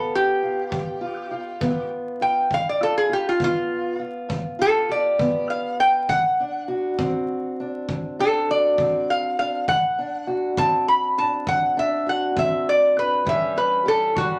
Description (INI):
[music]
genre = acoustic country blues, solo or duo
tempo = 67 BPM (dotted quarters)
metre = 12/8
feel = straight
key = D mixolydian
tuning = A4 = 440 Hz
[part]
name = lap resonator guitar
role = melody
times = 0.0-14.4 s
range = F4 to B5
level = -22 LUFS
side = equal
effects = none
[part]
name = fingerpicked steel-string acoustic guitar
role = accompaniment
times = 0.0-14.4 s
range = D2 to G4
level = -30 LUFS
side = equal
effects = none
[part]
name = kick drum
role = drums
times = 0.7-14.3 s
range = none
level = -32 LUFS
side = equal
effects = none
[sound]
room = wet studio reverb, RT60 0.6 s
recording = vinyl crackle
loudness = -22 LUFS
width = mono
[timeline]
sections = 0.0-14.4 A section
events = resonator guitar played with a steel bar solo 0.0-14.4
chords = 0.0 G7; 6.1 D7; 13.3 A7